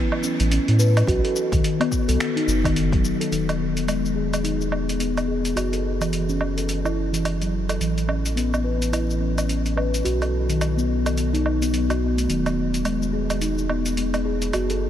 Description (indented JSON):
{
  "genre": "organic downtempo",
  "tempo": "107 BPM",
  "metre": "4/4",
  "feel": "swing 59% on 16ths",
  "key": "unclear",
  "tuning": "A4 = 441 Hz",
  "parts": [
    { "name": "steel tongue drum", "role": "arpeggios", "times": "0.0-14.8 s", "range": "D#3 to B4", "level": "-23 LUFS", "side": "left 2 dB", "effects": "low-pass filter, analog delay" },
    { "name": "dusty soul sampler-style drum kit", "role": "drums", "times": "0.1-14.8 s", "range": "finger snaps, hi-hat, shaker, woodblock", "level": "-29 LUFS", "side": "right 2 dB", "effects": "overdrive" },
    { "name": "warm sub bass", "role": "bass", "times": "0.4-14.9 s", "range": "E1 to A2", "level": "-24 LUFS", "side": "equal", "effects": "sidechain pumping" },
    { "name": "electronic kick drum", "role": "drums", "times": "1.1-3.0 s", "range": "none", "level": "-24 LUFS", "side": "equal", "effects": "overdrive" }
  ],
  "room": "moderate huge ambient reverb, RT60 8.2 s",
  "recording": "dreamy mix soaked in reverb",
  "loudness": "-20 LUFS",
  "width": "side -10 dB against mid",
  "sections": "0.0-3.3 A section; 3.3-14.9 B section",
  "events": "filter sweep on steel tongue drum 3.3-14.9",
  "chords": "0.0 A; 1.1 B7; 3.3 Emaj7; 5.6 F#m7; 7.8 Aadd9; 10.1 B7(no3); 12.3 Emaj7"
}